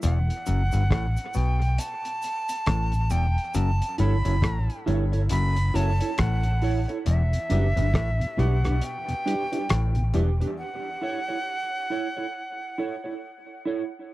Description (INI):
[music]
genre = dub reggae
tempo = 68 BPM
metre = 4/4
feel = swing 60% on 16ths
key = F# phrygian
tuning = A4 = 442 Hz
[part]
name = breathy bright jazz flute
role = melody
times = 0.0-13.6 s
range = E5 to B5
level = -31 LUFS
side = right 1 dB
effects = dub echo
[part]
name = mellow clav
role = riff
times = 0.0-10.3 s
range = E2 to B2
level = -32 LUFS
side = left 4 dB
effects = dub echo
[part]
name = vintage muted fingered electric bass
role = bass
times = 0.0-10.4 s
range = E1 to B1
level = -23 LUFS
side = equal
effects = tube saturation
[part]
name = cloth-damped thuddy drum kit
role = drums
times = 0.0-10.6 s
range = hi-hat, kick drum, rim click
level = -29 LUFS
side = equal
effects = none
[part]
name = cabasa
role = percussion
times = 0.0-3.8 s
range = none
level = -46 LUFS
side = right 6 dB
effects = none
[part]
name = mellow electric guitar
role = accompaniment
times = 4.0-13.8 s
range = D4 to C#5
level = -31 LUFS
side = right 4 dB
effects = analog chorus, dub echo
[part]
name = mellow tonewheel organ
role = accompaniment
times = 7.3-10.5 s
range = E2 to E4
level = -34 LUFS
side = equal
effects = slow rotary speaker, dub echo
[sound]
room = little or no reverb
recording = dry, close 1970s-style studio recording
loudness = -23 LUFS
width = side -17 dB against mid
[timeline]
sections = 0.0-10.6 A section; 10.6-14.1 B section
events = break 0.0-7.1, 8.8-10.6; part muted 3.5-10.6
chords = 0.0 Em; 3.5 F#m7; 7.1 Em7; 10.6 F#m7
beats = | 0.03 0.91 1.79 2.67 | 3.55 4.43 5.31 6.18 | 7.06 7.94 8.82 9.70 | 10.58 11.46 12.34 13.22